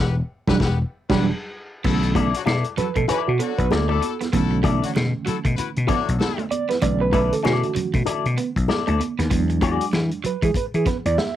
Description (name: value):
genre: funk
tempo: 96 BPM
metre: 4/4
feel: swing 60% on 16ths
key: B dorian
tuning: A4 = 440 Hz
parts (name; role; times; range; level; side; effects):
- clear horn section; second line; 0.0-6.4 s; F#3 to B4; -30 LUFS; left 9 dB; none
- vintage slap bass; bass; 0.0-11.2 s; E1 to E3; -22 LUFS; left 1 dB; tube saturation
- reed electric piano; stabs; 0.5-11.4 s; D3 to E5; -25 LUFS; right 6 dB; overdrive, fast tremolo
- warm soul drum kit; drums; 0.5-11.3 s; crash cymbal, hi-hat, kick drum, snare drum; -26 LUFS; left 1 dB; none
- electric guitar at the edge of break-up; riff; 1.8-11.0 s; F#3 to B3; -30 LUFS; right 6 dB; none
- congas; percussion; 1.8-11.3 s; none; -32 LUFS; right 7 dB; none
- electric guitar with an envelope filter; accompaniment; 2.1-9.8 s; E4 to D5; -25 LUFS; left 10 dB; wide subtle chorus
room: light reverb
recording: home recording on cassette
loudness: -19 LUFS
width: side -12 dB against mid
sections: 0.0-1.8 A section; 1.8-11.4 B section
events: break 0.0-1.8; band accent 0.0-1.8; reed electric piano solo 1.8-11.4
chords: 0.0 Em9; 1.8 Bm11; 9.3 E9